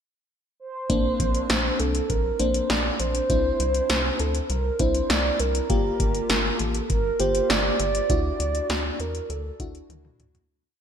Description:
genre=synth-pop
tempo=100 BPM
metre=4/4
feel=straight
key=unclear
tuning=A4 = 439 Hz
part: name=mellow horn-like synth lead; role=melody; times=0.6-10.2 s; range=A4 to D5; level=-26 LUFS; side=right 3 dB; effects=chorus, ping-pong delay
part: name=FM electric piano with soft pad layer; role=accompaniment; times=0.9-10.4 s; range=Bb3 to G4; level=-29 LUFS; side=left 2 dB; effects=chorus
part: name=rubbery square bass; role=bass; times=0.9-10.4 s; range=G1 to E2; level=-28 LUFS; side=equal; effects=none
part: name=electro analog drum machine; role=drums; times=0.9-10.5 s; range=hi-hat, kick drum, snare drum, toms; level=-25 LUFS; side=equal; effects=gated reverb
room=moderate lush hall reverb, RT60 2.4 s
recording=bright 1980s-style digital production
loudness=-21 LUFS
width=side -8 dB against mid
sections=0.0-0.9 pickup bar; 0.9-10.5 verse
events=fade-out 8.1-10.5; drum fill 9.9-10.5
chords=0.0 N.C.; 0.9 Bbadd9; 3.3 Cadd9; 5.7 Gm7; 8.1 Dadd9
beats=0.30 | 0.90 1.50 2.10 2.70 | 3.30 3.90 4.50 5.10 | 5.70 6.30 6.90 7.50 | 8.10 8.70 9.30 9.90

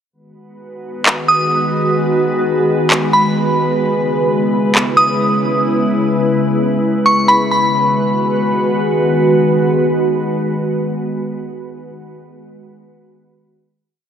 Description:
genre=hip hop, atmospheric cloud-rap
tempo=free time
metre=none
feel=none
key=G# minor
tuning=A4 = 440 Hz
part: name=glassy FM pad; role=sustained chords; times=0.7-11.8 s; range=C#3 to B4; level=-15 LUFS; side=equal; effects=ensemble chorus, built-in reverb
part: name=electronic handclaps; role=drums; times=1.1-4.9 s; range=none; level=-16 LUFS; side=equal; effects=none
part: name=glassy synth bell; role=melody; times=1.3-8.9 s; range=B5 to D#6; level=-15 LUFS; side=equal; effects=chorus, tremolo, tape echo
room=moderate huge ambient reverb, RT60 4.2 s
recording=none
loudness=-12 LUFS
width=side -8 dB against mid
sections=0.1-7.5 breakdown; 7.5-11.2 final chord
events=none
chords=0.1 G#m7; 3.8 C#m7; 7.5 G#m7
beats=free time

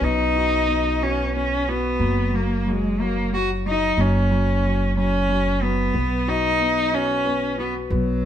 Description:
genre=pop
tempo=61 BPM (dotted quarters)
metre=6/8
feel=straight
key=F# major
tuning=A4 = 443 Hz
part: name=warm cello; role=melody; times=0.0-8.3 s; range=F#3 to F#4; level=-22 LUFS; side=equal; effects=none
part: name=warm upright piano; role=accompaniment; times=0.0-8.3 s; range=B2 to F#4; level=-26 LUFS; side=left 1 dB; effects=none
part: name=upright bass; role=bass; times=0.0-8.3 s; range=F#1 to B1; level=-24 LUFS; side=equal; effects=none
room=moderate stone room reverb, RT60 1.1 s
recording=band playing live in one room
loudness=-19 LUFS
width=side -10 dB against mid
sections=0.0-8.3 A section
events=none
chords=0.0 Badd9; 2.0 F#5; 5.9 Badd9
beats=| 0.02 1.01 | 2.01 3.00 | 3.98 4.96 | 5.94 6.92 | 7.91

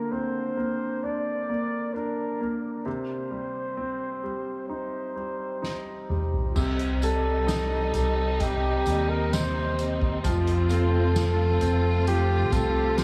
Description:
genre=pop ballad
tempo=66 BPM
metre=4/4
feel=straight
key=C dorian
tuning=A4 = 441 Hz
part: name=breathy flugelhorn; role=melody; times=0.0-13.0 s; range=G4 to D5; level=-32 LUFS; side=equal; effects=none
part: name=clear concert grand piano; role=accompaniment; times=0.0-13.0 s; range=C3 to Eb4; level=-33 LUFS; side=equal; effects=subtle chorus
part: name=soft-mallet drum kit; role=drums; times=5.6-13.0 s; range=crash cymbal, hi-hat, kick drum, snare drum, toms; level=-33 LUFS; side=equal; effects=none
part: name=dark French horn section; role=second line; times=6.5-13.0 s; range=Eb4 to G4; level=-36 LUFS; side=equal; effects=none
part: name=warm studio string section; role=sustained chords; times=6.6-13.0 s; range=G3 to F4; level=-35 LUFS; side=equal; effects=none
part: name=fretless electric bass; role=bass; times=6.6-13.0 s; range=F1 to Eb2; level=-28 LUFS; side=equal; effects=none
part: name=tambourine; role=percussion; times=6.6-13.0 s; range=none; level=-46 LUFS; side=equal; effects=none
room=moderate cathedral reverb, RT60 4.6 s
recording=dreamy mix soaked in reverb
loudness=-26 LUFS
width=mono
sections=0.0-6.6 A section; 6.6-13.0 B section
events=drum fill 5.6-6.6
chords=0.0 Bbadd9/D; 2.9 Cm; 10.2 F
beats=0.12 1.04 1.95 | 2.86 3.78 4.69 5.62 | 6.56 7.48 8.40 9.32 | 10.24 11.15 12.07 12.97

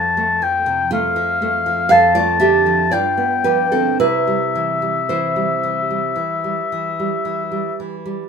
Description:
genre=romantic duo for oboe and classical guitar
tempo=55-61 BPM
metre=4/4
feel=rubato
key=C major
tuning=A4 = 440 Hz
part: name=warm oboe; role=melody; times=0.0-7.8 s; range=E5 to A5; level=-18 LUFS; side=left 5 dB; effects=none
part: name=nylon-string guitar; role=accompaniment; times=0.0-8.3 s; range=F2 to F5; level=-18 LUFS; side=right 3 dB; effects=none
room=moderate studio reverb, RT60 0.5 s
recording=minimal, uncompressed stereo recording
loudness=-15 LUFS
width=side -6 dB against mid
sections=0.0-8.3 A section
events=none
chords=0.0 F; 1.9 Dm/F; 2.9 G7; 4.0 C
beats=0.92 1.92 2.93 | 3.99 5.08 6.18 7.25

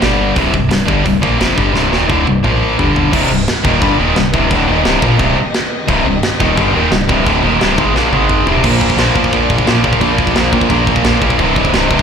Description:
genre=heavy metal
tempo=174 BPM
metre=4/4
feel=straight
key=C minor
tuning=A4 = 440 Hz
part: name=distorted electric guitar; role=riff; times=0.0-12.0 s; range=C2 to Bb3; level=-17 LUFS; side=left 12 dB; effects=overdrive
part: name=heavy high-gain guitar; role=riff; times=0.0-12.0 s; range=C2 to Bb3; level=-16 LUFS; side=right 10 dB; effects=distortion, slapback echo
part: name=fat analog bass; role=bass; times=0.0-12.0 s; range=C1 to Bb1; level=-18 LUFS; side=equal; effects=none
part: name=tight metal drum kit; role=drums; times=0.0-12.0 s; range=crash cymbal, hi-hat, kick drum, snare drum, toms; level=-17 LUFS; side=equal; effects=none
part: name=warm studio string section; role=sustained chords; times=3.1-12.0 s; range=Eb3 to Eb5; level=-25 LUFS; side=left 1 dB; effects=none
part: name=fuzz guitar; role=riff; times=3.1-12.0 s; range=C2 to Bb3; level=-19 LUFS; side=equal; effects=distortion, slapback echo
room=small room ambience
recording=live gig heard through the venue's PA, club reverb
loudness=-10 LUFS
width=side -7 dB against mid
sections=0.0-3.1 A section; 3.1-8.6 B section; 8.6-12.0 C section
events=drum fill 1.7-3.1, 7.9-8.6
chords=0.0 G5; 0.4 Cm; 2.4 Bb5; 2.8 G5; 3.1 Cm; 8.1 Ab5; 8.5 Cm; 8.6 Bb; 11.4 Cm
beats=0.02 | 0.37 0.71 1.06 1.40 | 1.75 2.09 2.44 2.78 | 3.13 3.47 3.82 4.16 | 4.51 4.85 5.20 5.54 | 5.88 6.23 6.57 6.92 | 7.26 7.61 7.95 8.29 | 8.64 8.98 9.33 9.67 | 10.01 10.36 10.70 11.05 | 11.39 11.74

